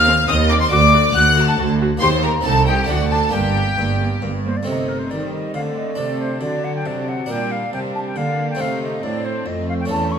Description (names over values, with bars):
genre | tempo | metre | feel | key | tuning
classical, baroque-style concerto movement with solo episodes | 138 BPM | 3/4 | straight | unclear | A4 = 443 Hz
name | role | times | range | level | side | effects
concert flute | melody | 0.0-10.2 s | Bb4 to F#6 | -21 LUFS | left 2 dB | none
rich chamber violin section | melody | 0.0-10.2 s | G4 to F#6 | -25 LUFS | left 5 dB | none
clear chamber violin section | second line | 0.0-10.2 s | C4 to F#5 | -26 LUFS | left 4 dB | none
harpsichord | accompaniment | 0.0-10.2 s | C2 to C5 | -25 LUFS | right 1 dB | none
rich chamber cello section | bass | 0.0-10.2 s | C2 to Eb3 | -23 LUFS | right 3 dB | none
warm chamber double bass section | bass | 0.0-4.6 s | G1 to Eb2 | -22 LUFS | right 4 dB | none
clear studio viola section | accompaniment | 0.1-10.2 s | F#3 to G4 | -28 LUFS | right 2 dB | none
room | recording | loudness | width
moderate scoring stage reverb, RT60 1.6 s | minimal, uncompressed stereo recording | -16 LUFS | side -7 dB against mid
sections
0.0-4.7 A section; 4.7-10.2 B section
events
none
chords
0.0 Cm/Eb; 0.7 D; 2.0 Eb; 2.5 Adim/C; 2.9 D; 3.3 Gm; 4.7 Adim/C; 6.0 D7/C; 7.3 Gm/Bb; 8.6 Adim